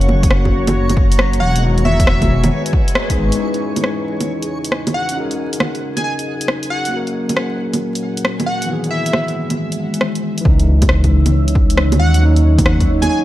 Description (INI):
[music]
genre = future garage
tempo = 136 BPM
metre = 4/4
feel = swing 67% on 16ths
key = C# dorian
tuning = A4 = 440 Hz
[part]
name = overdriven tine electric piano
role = accompaniment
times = 0.0-13.2 s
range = D#3 to A#4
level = -22 LUFS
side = left 1 dB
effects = sidechain pumping, low-pass filter, tape echo
[part]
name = deep dark ambient pad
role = sustained chords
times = 0.0-13.2 s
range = E3 to E6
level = -23 LUFS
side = equal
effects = chorus, built-in reverb, vintage 12-bit sampler grit, sidechain pumping
[part]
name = dark detuned saw bass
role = bass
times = 0.0-3.3, 10.5-13.1 s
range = E1 to D#2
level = -14 LUFS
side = equal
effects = tube saturation, sidechain pumping
[part]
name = deep house drum kit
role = drums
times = 0.0-13.1 s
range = bongos, hi-hat, rim click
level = -20 LUFS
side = right 1 dB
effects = overdrive, studio reverb
[part]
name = backwards swelling texture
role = texture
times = 0.0-10.5 s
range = G#4 to C#5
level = -32 LUFS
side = equal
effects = built-in reverb
[part]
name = electronic kick drum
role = drums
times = 0.2-3.2, 10.5-12.9 s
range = none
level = -15 LUFS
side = equal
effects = overdrive, studio reverb
[part]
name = plucky unison lead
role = melody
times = 1.4-13.2 s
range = E5 to G#5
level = -24 LUFS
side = equal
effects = tape echo
[sound]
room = light reverb, digital ambience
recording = vinyl crackle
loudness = -13 LUFS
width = side -14 dB against mid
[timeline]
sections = 0.0-3.4 A section; 3.4-10.5 B section; 10.5-13.2 A section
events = band accent 3.0; filter sweep on ambient pad 3.4-10.5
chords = 0.0 F#; 1.6 Emaj7; 3.4 C#madd9; 5.2 D#m7; 6.9 F#; 8.7 Emaj7; 10.5 C#madd9; 12.2 D#m7